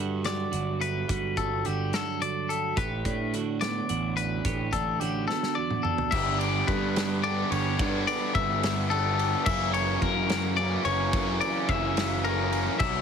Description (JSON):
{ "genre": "math rock and midwest emo", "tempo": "72 BPM (dotted quarters)", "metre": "6/8", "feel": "straight", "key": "unclear", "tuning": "A4 = 440 Hz", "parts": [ { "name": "twelve-string electric guitar", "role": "accompaniment", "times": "0.0-7.8 s", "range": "E2 to G4", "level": "-32 LUFS", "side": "right 11 dB", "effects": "none" }, { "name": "fuzz picked electric bass", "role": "bass", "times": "0.0-13.0 s", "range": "F#1 to A2", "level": "-31 LUFS", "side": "equal", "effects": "overdrive" }, { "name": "loose indie drum kit", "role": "drums", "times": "0.2-12.9 s", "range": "crash cymbal, hi-hat, kick drum, ride cymbal, snare drum, toms", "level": "-32 LUFS", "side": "equal", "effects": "none" }, { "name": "twangy electric guitar", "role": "arpeggios", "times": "0.3-13.0 s", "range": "G4 to E5", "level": "-29 LUFS", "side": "left 7 dB", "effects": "none" }, { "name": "raw garage guitar", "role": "riff", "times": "6.1-13.0 s", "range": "F#2 to D4", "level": "-30 LUFS", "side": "right 2 dB", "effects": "overdrive" } ], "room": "little or no reverb", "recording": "heavily compressed radio sound", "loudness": "-25 LUFS", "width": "side -7 dB against mid", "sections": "0.0-6.1 A section; 6.1-13.0 B section", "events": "drum fill 5.3-6.1", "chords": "0.0 Gmaj9; 2.8 A9sus4; 6.1 G6; 9.5 F#7" }